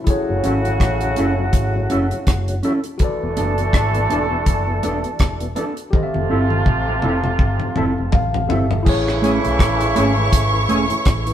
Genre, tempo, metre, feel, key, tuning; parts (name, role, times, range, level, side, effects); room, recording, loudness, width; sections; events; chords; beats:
lovers rock reggae; 82 BPM; 4/4; swing 57% on 16ths; A major; A4 = 440 Hz
bright tine electric piano; accompaniment; 0.0-11.3 s; E4 to A5; -26 LUFS; left 2 dB; dub echo
clear horn section; second line; 0.1-11.3 s; C3 to A4; -23 LUFS; right 1 dB
deep reggae drum kit; drums; 0.1-11.3 s; crash cymbal, hi-hat, kick drum, rim click, toms; -19 LUFS; equal
tonewheel organ; accompaniment; 0.3-11.3 s; E2 to G#4; -29 LUFS; left 2 dB; overdrive, slow rotary speaker
vintage muted fingered electric bass; bass; 0.3-11.3 s; E1 to B1; -22 LUFS; equal
mellow electric guitar; stabs; 0.4-10.8 s; A3 to A4; -22 LUFS; right 2 dB
warm symphonic violin section; second line; 8.9-11.3 s; C#5 to C#6; -23 LUFS; equal
moderate stone room reverb, RT60 1.0 s; band playing live in one room; -16 LUFS; side -10 dB against mid
0.0-8.9 A section; 8.9-11.3 B section
drum fill 5.9-8.9; tine electric piano fill 7.4-8.9
0.1 F#m7; 3.0 E7sus4; 5.9 Fmaj7; 8.9 Amaj7
| 0.08 0.81 1.54 2.27 | 3.01 3.74 4.47 5.20 | 5.94 6.67 7.40 8.13 | 8.86 9.60 10.33 11.06